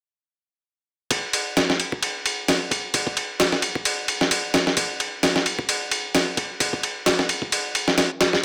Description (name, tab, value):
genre	breakbeat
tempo	131 BPM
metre	4/4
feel	swing 56% on 16ths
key	none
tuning	none
part	dusty soul sampler-style drum kit	drums	1.1-8.4 s	kick drum, ride cymbal, snare drum	-22 LUFS	equal	high-pass filter on cymbals, high-pass filter on kick, high-pass filter on snare
room	light reverb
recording	none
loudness	-23 LUFS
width	mono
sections	1.1-8.4 A section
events	none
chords	none